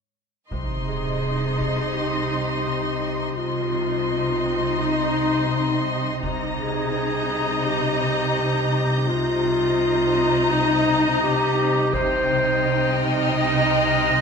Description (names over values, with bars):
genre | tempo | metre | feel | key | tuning
cinematic, suspense film score | 84 BPM | 4/4 | straight | C minor | A4 = 440 Hz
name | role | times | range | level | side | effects
rich chamber violin section | melody | 0.5-14.2 s | G5 to C6 | -29 LUFS | left 4 dB | none
rich chamber violin section | second line | 0.5-14.2 s | Eb5 | -29 LUFS | right 1 dB | none
clear studio viola section | accompaniment | 0.5-14.2 s | Eb4 | -28 LUFS | right 1 dB | none
concert harp | riff | 0.5-14.2 s | C3 to C4 | -29 LUFS | left 11 dB | none
clear chamber double bass section | bass | 0.5-14.2 s | C2 | -31 LUFS | right 8 dB | none
warm chamber cello section | bass | 0.5-14.2 s | C3 | -29 LUFS | right 3 dB | none
taiko ensemble | drums | 0.5-1.9, 6.2-7.6, 11.9-13.3 s | none | -35 LUFS | right 1 dB | none
sub drop | sound effects | 0.5-3.4 s | none | -33 LUFS | right 2 dB | none
warm clarinet | second line | 0.9-14.2 s | Eb4 to Eb5 | -24 LUFS | left 1 dB | none
rich studio violin section | texture | 6.2-14.2 s | C6 to Bb6 | -32 LUFS | left 2 dB | none
room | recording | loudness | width
wet concert hall reverb, RT60 2.2 s | none | -19 LUFS | side -5 dB against mid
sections
0.5-14.2 A section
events
break 0.0-0.5; impact 0.5-3.4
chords
0.0 N.C.; 0.5 Cm